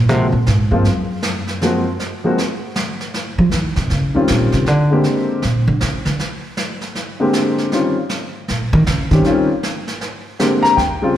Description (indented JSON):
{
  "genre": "jazz piano trio",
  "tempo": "157 BPM",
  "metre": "4/4",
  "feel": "swing 64% on 8ths",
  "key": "unclear",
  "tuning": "A4 = 440 Hz",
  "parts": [
    { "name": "upright bass", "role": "bass", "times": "0.0-6.2, 8.5-11.1 s", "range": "Eb2 to F3", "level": "-16 LUFS", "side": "right 1 dB", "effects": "none" },
    { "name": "warm baby grand piano", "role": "melody", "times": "0.1-11.2 s", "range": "Db3 to Bb5", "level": "-17 LUFS", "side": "left 1 dB", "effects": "slapback echo" },
    { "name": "jazz brush drum kit", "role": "drums", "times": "0.1-11.2 s", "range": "brushed snare drum, kick drum, snare drum", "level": "-24 LUFS", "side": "equal", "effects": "none" }
  ],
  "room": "light reverb, studio reverb",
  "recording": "live gig heard through the venue's PA, club reverb",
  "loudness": "-15 LUFS",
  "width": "side -11 dB against mid",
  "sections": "0.0-10.8 A section",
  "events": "upright bass solo 0.0-10.8",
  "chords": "0.0 Ab13; 3.1 Eb13; 4.7 Bb13; 7.7 Eb13; 10.0 Bb13"
}